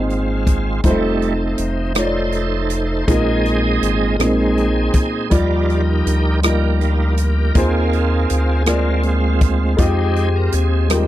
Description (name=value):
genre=slow gospel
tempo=54 BPM (dotted quarters)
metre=6/8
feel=straight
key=Eb major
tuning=A4 = 440 Hz
part: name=warm concert grand piano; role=accompaniment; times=0.0-11.1 s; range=Bb2 to Eb5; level=-20 LUFS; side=left 1 dB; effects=none
part: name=bright tonewheel organ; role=sustained chords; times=0.0-11.1 s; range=Eb3 to Eb5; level=-21 LUFS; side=right 4 dB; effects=fast rotary speaker, overdrive, chorus vibrato
part: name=round analog bass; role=bass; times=0.0-11.1 s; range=F1 to F2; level=-19 LUFS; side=equal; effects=none
part: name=swinging big-band drum kit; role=drums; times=0.1-11.1 s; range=hi-hat, kick drum, rim click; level=-18 LUFS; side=equal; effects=none
room=little or no reverb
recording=dry, close 1970s-style studio recording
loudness=-15 LUFS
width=side -14 dB against mid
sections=0.0-11.1 A section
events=tonewheel organ solo 0.0-11.1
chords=0.0 Bb9sus4; 0.8 F7; 3.1 Bb7sus4; 4.2 Bb9sus4; 5.3 Ebmaj9; 7.6 Ab69; 9.8 Fm9